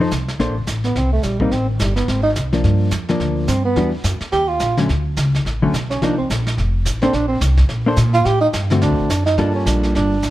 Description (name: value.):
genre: jazz, small-group swing and bop.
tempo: 214 BPM.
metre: 4/4.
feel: swing 59% on 8ths.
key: Bb major.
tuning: A4 = 440 Hz.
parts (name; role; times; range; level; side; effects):
hollow-body jazz guitar; accompaniment; 0.0-10.2 s; D3 to C5; -20 LUFS; left 2 dB; none.
upright bass; bass; 0.0-10.3 s; F1 to Bb2; -19 LUFS; equal; none.
vintage brush drum kit; drums; 0.1-10.3 s; brushed snare drum, hi-hat, kick drum, snare drum; -26 LUFS; right 1 dB; none.
breathy tenor saxophone; second line; 0.8-10.3 s; Eb3 to G4; -19 LUFS; right 3 dB; none.
room: light reverb.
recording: none.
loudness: -15 LUFS.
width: side -15 dB against mid.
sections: 0.4-9.4 A section.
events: tenor saxophone solo 0.4-10.3.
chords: 0.4 Bbmaj9; 1.5 Gadd9; 2.1 Ab69; 2.6 Gm7; 3.8 Em9; 4.3 Eb5; 4.9 Dmaj7(no3); 6.0 Cm7; 6.6 F6; 7.1 Bbsus2; 8.3 Csus2; 8.8 D7; 9.4 Gm9.